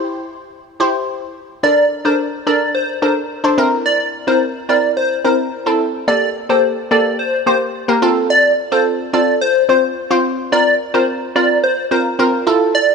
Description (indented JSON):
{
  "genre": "pop",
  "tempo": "108 BPM",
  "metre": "4/4",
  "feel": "straight",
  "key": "unclear",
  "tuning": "A4 = 440 Hz",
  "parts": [
    { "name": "glassy wavetable pluck", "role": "accompaniment", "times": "0.0-12.9 s", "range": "Bb3 to C5", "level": "-16 LUFS", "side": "equal", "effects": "chorus" },
    { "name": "plucky unison lead", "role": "melody", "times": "1.6-12.9 s", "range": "C5 to D5", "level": "-15 LUFS", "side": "left 1 dB", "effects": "phaser, tape echo" }
  ],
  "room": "moderate lush hall reverb, RT60 2.5 s",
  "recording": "none",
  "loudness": "-13 LUFS",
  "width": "side -5 dB against mid",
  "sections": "0.0-1.6 A section; 1.6-10.5 B section; 10.5-12.9 C section",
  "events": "none",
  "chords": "0.0 C; 1.6 Bbmaj7; 3.6 C7; 6.1 Gmadd9; 8.0 F; 10.5 C7sus4"
}